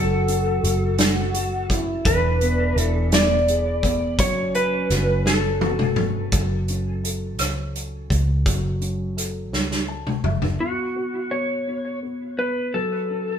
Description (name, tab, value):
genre	six-eight pop ballad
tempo	56 BPM (dotted quarters)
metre	6/8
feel	straight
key	F# minor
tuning	A4 = 440 Hz
part	electric slide guitar	melody	0.0-6.0, 10.6-13.4 s	F#4 to D5	-24 LUFS	left 1 dB	tape echo
part	warm French horn section	second line	0.0-5.9 s	C#4 to F#4	-30 LUFS	right 2 dB	none
part	dark baby grand piano	accompaniment	0.0-13.4 s	E3 to A5	-29 LUFS	equal	none
part	vintage muted fingered electric bass	bass	0.0-10.6 s	E1 to C#2	-24 LUFS	equal	none
part	loose indie drum kit	drums	0.3-10.6 s	hi-hat, kick drum, rim click, snare drum, toms	-23 LUFS	equal	none
room	moderate stone room reverb, RT60 1.1 s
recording	band playing live in one room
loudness	-20 LUFS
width	side -8 dB against mid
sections	0.0-6.3 A section; 6.3-10.6 B section; 10.6-13.4 C section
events	drum fill 5.3-6.3, 9.5-10.6; grand piano fill 9.5-10.6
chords	0.0 F#m; 2.1 E; 4.2 F#m; 10.6 N.C.; 12.7 F#m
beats	0.99 | 2.06 3.12 | 4.19 5.26 | 6.33 7.39 | 8.46 9.53 | 10.60 11.67 | 12.74